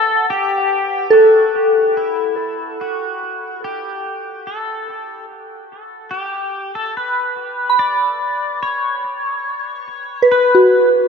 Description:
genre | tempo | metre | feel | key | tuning
ambient | 72 BPM | 3/4 | straight | unclear | A4 = 440 Hz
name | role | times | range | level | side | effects
pedal steel guitar | melody | 0.0-10.9 s | E4 to D5 | -20 LUFS | left 2 dB | analog chorus, analog delay
soft synth bell | arpeggios | 0.0-11.1 s | F#4 to B5 | -15 LUFS | equal | chorus, analog delay
room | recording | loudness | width
wet plate reverb, RT60 3.8 s | dreamy mix soaked in reverb | -15 LUFS | side -6 dB against mid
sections
0.0-1.1 A section; 1.1-11.1 B section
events
fade-in on pedal steel guitar 1.1-11.1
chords
0.0 F#sus4; 1.1 F#m; 6.1 F#sus4 (rootless)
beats
0.28 | 1.11 1.95 2.78 | 3.61 4.45 5.28 | 6.11 6.95 7.78 | 8.61 9.45 10.28

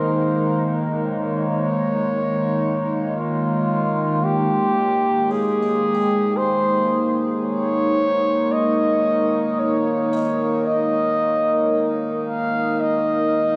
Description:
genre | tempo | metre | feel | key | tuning
ambient | 56 BPM | 3/4 | straight | Eb mixolydian | A4 = 440 Hz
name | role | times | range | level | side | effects
mellow flugelhorn | melody | 0.0-13.6 s | F4 to F5 | -23 LUFS | equal | diffuse ambient delay
warbly tape-like pad | sustained chords | 0.0-13.6 s | Eb3 to Eb5 | -24 LUFS | equal | chorus, built-in reverb
pedal harmonium | drone | 4.2-13.6 s | Eb3 | -34 LUFS | equal | none
buzzing kalimba | arpeggios | 5.3-11.2 s | Db5 to G5 | -41 LUFS | equal | none
room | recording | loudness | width
wet huge ambient reverb, RT60 9.1 s | none | -20 LUFS | mono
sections
0.0-4.2 A section; 4.2-13.6 B section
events
fade-in on harmonium 4.2-13.6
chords
0.0 Bbm7/Eb; 4.2 Eb7sus4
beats
| 1.02 2.09 3.16 | 4.23 5.30 6.37 | 7.45 8.52 9.59 | 10.66 11.73 12.80

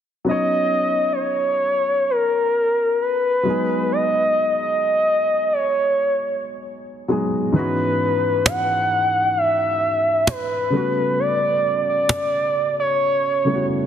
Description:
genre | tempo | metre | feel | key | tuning
contemporary R&B | 66 BPM | 4/4 | swing 54% on 16ths | B major | A4 = 442 Hz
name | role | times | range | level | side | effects
dark baby grand piano | accompaniment | 0.2-13.9 s | G#2 to C#5 | -24 LUFS | equal | none
gliding portamento lead | melody | 0.3-13.7 s | A#4 to F#5 | -18 LUFS | equal | chorus, digital delay
cajon | drums | 8.5-12.3 s | none | -21 LUFS | equal | none
room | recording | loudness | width
moderate concert hall reverb, RT60 2.2 s | dense, heavily limited modern master | -17 LUFS | side -9 dB against mid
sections
0.3-13.9 A section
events
none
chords
0.3 Bmaj9; 3.5 G#m7; 7.5 E69/G#; 10.7 Gmaj9#11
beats
| 0.27 1.18 2.09 3.00 | 3.90 4.81 5.72 6.63 | 7.54 8.45 9.36 10.27 | 11.18 12.09 13.00

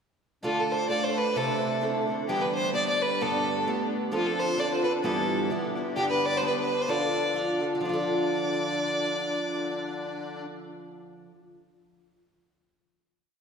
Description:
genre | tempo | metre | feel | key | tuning
celtic folk, Celtic polka | 130 BPM | 2/4 | swing 57% on 8ths | D dorian | A4 = 440 Hz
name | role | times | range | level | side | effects
rich fiddle | melody | 0.4-10.4 s | F4 to D5 | -28 LUFS | equal | none
picked twelve-string acoustic guitar | accompaniment | 0.4-11.4 s | G2 to A4 | -29 LUFS | right 1 dB | none
musette accordion | drone | 0.4-10.5 s | D3 to D4 | -36 LUFS | left 3 dB | none
room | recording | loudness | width
wet concert hall reverb, RT60 2.3 s | recorded in a church or concert hall | -25 LUFS | side -6 dB against mid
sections
0.4-7.8 A section; 7.8-9.6 final chord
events
none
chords
0.4 Dm; 1.4 Am/C; 2.3 Em7; 3.2 Gadd9; 4.1 F; 5.0 Em/G; 6.0 G; 6.9 Dm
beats
| 0.43 0.89 | 1.36 1.82 | 2.28 2.74 | 3.20 3.66 | 4.12 4.58 | 5.04 5.50 | 5.96 6.42 | 6.88 7.34 | 7.80 8.26 | 8.72 9.19

